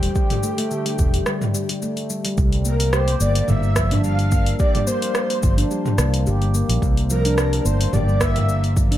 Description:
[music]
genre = organic downtempo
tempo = 108 BPM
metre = 4/4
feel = swing 54% on 16ths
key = unclear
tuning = A4 = 439 Hz
[part]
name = breathy flute-like synth lead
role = melody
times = 0.0-8.7 s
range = G4 to F5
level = -26 LUFS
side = equal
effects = ensemble chorus, ping-pong delay
[part]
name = handpan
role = arpeggios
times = 0.0-9.0 s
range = D3 to G4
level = -25 LUFS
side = left 1 dB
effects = digital delay
[part]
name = fretless electric bass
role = bass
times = 0.0-9.0 s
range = E1 to C2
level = -20 LUFS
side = equal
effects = none
[part]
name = deep house drum kit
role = drums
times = 0.0-9.0 s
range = cabasa, hi-hat, rim click, toms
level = -25 LUFS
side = equal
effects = overdrive
[part]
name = bronze singing bowl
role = texture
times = 0.0-2.4 s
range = none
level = barely audible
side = none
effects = none
[part]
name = electronic kick drum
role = drums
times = 0.2-8.9 s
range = none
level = -20 LUFS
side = equal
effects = overdrive
[sound]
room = light reverb, digital ambience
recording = none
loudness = -17 LUFS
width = side -13 dB against mid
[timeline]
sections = 0.0-2.4 A section; 2.4-9.0 B section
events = break 1.3-2.4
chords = 0.0 Emadd11 (rootless); 2.4 C5

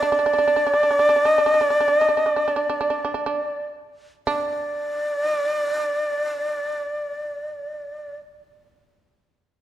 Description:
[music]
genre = japanese traditional, Japanese chamber music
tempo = 51-76 BPM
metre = 4/4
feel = rubato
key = unclear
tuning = A4 = 440 Hz
[part]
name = breathy bright long shakuhachi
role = melody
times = 0.0-8.2 s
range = D5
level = -20 LUFS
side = equal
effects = none
[part]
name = shamisen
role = second line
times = 0.0-8.2 s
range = D4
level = -26 LUFS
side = right 4 dB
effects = none
[sound]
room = moderate scoring stage reverb, RT60 1.6 s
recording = dark, warm production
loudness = -19 LUFS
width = side -12 dB against mid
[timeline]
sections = 0.0-4.3 A section; 4.3-8.8 B section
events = slowing down 0.0-4.3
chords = none

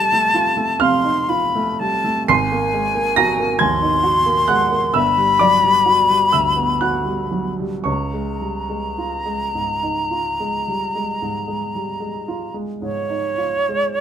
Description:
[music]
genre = classical, impressionist duo for flute and grand piano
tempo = 32-47 BPM (dotted quarters)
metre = 12/8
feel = rubato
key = Db lydian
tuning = A4 = 440 Hz
[part]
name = bright silver concert flute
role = melody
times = 0.0-14.0 s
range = Db5 to C6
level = -18 LUFS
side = left 3 dB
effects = none
[part]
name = warm grand piano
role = accompaniment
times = 0.0-14.0 s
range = G1 to C7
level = -20 LUFS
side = right 3 dB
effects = none
[sound]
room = light reverb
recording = minimal, uncompressed stereo recording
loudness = -16 LUFS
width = side -8 dB against mid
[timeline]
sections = 0.0-14.0 A section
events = none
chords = 0.0 F7; 2.3 Ab9; 4.9 Gmaj7; 7.9 Dbadd9

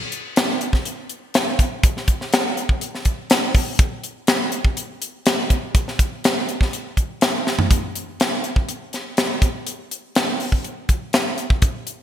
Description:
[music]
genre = jazz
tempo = 123 BPM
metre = 4/4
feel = straight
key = none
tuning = none
[part]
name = crisp fusion drum kit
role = drums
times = 0.1-12.0 s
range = hi-hat, kick drum, snare drum, toms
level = -18 LUFS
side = equal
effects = gated reverb
[sound]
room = moderate lush hall reverb, RT60 1.7 s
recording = bright 1980s-style digital production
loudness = -18 LUFS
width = side -10 dB against mid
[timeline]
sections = 0.0-7.7 A section; 7.7-12.0 B section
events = drum fill 7.5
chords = none

